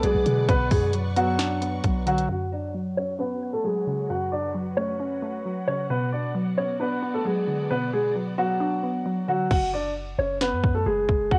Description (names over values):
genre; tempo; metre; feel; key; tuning
hip hop, trap; 133 BPM; 4/4; half-time; unclear; A4 = 442 Hz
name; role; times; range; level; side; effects
dark baby grand piano; melody; 0.0-11.4 s; F#3 to F#5; -28 LUFS; equal; low-pass filter, cassette tape
warbly dusty pluck; accompaniment; 0.0-9.5 s; F#2 to D4; -32 LUFS; equal; chorus, low-pass filter
clear symphonic string section; sustained chords; 0.0-9.5 s; F#3 to D6; -41 LUFS; equal; low-pass filter
warm 808-style bass; bass; 0.0-2.3, 9.5-11.4 s; F#1 to B2; -30 LUFS; equal; none
trap drum kit; drums; 0.0-2.3, 9.5-11.4 s; crash cymbal, hi-hat, kick drum, snare drum; -28 LUFS; equal; cassette tape
room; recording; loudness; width
light reverb, small room reverb; home recording on cassette; -25 LUFS; mono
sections
0.0-2.3 A section; 2.3-9.5 B section; 9.5-11.4 C section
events
filter sweep 2.3-9.5; hi-hats muted 9.5-11.4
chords
0.0 Bm; 2.3 F#m; 5.9 Bm; 9.5 N.C.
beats
0.04 | 0.49 0.94 1.39 1.84 | 2.29 2.74 3.19 3.65 | 4.10 4.55 5.00 5.45 | 5.90 6.35 6.80 7.25 | 7.71 8.16 8.61 9.06 | 9.51 9.96 10.41 10.86 | 11.31